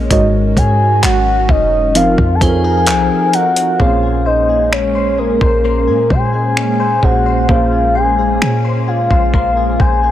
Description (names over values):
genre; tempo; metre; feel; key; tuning
contemporary R&B; 65 BPM; 4/4; straight; Bb minor; A4 = 438 Hz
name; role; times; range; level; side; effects
muted felt-like synth keys; accompaniment; 0.0-10.1 s; Ab2 to F5; -19 LUFS; right 2 dB; chorus
hollow soft pad; sustained chords; 0.0-10.1 s; F3 to Bb4; -22 LUFS; left 1 dB; ensemble chorus
direct-recorded clean electric guitar; arpeggios; 0.0-10.1 s; Ab2 to C5; -23 LUFS; left 7 dB; ensemble chorus
clean 808-style bass; bass; 0.0-10.1 s; F1 to Bb2; -17 LUFS; equal; none
glassy synth bell; texture; 0.0-4.2 s; Bb4 to C5; -31 LUFS; right 4 dB; chorus, tremolo, digital delay
soft octave-layered synth lead; melody; 0.1-10.1 s; Bb4 to A5; -15 LUFS; left 1 dB; chorus, digital delay
dusty soul sampler-style drum kit; drums; 0.1-10.0 s; finger snaps, handclaps, hi-hat, kick drum; -17 LUFS; equal; none
room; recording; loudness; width
little or no reverb; none; -11 LUFS; side -12 dB against mid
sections
0.0-3.8 A section; 3.8-10.1 B section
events
none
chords
0.1 Ab7sus4; 2.0 F7sus4; 3.8 Bbm9